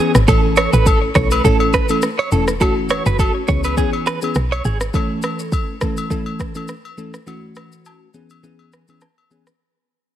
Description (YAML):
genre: afrobeats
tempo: 103 BPM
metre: 4/4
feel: swing 55% on 16ths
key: unclear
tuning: A4 = 440 Hz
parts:
  - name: crystalline FM electric piano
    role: accompaniment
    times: 0.0-9.5 s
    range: E3 to A4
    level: -21 LUFS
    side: left 1 dB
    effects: chorus, phaser
  - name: direct-recorded clean electric guitar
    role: riff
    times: 0.0-4.8 s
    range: G#4 to C#5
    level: -21 LUFS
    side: right 6 dB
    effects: tremolo, ping-pong delay
  - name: woody log drum bass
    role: bass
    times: 0.1-4.9 s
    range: E1 to C#2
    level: -18 LUFS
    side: equal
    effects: none
  - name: afro-pop drum kit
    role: drums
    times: 0.1-9.6 s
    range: kick drum, rim click, shaker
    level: -20 LUFS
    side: equal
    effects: none
  - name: agogo bells and woodblock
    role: percussion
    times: 0.3-9.3 s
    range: none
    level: -27 LUFS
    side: left 6 dB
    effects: none
room: light reverb, digital ambience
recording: heavily compressed radio sound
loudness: -15 LUFS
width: side -11 dB against mid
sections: 0.3-9.6 A section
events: fade-out 0.3-9.6; break 7.3-9.6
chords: 0.3 A; 2.6 F#m7; 3.5 C#m7; 4.9 A; 7.3 F#m7; 8.1 C#m7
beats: | 0.28 0.86 1.44 2.03 | 2.61 3.19 3.77 4.36 | 4.94 5.52 6.10 6.69 | 7.27 7.85 8.43 9.02